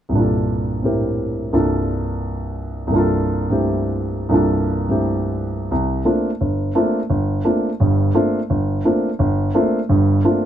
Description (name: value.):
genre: jazz.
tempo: 172 BPM.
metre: 4/4.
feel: swing 64% on 8ths.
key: C mixolydian.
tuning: A4 = 440 Hz.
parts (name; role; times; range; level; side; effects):
warm grand piano; solo; 0.1-10.5 s; G1 to Bb4; -17 LUFS; equal; none.
room: light reverb.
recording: none.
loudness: -17 LUFS.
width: side -10 dB against mid.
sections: 0.1-5.7 A section; 5.7-10.5 B section.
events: none.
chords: 0.1 C13sus4.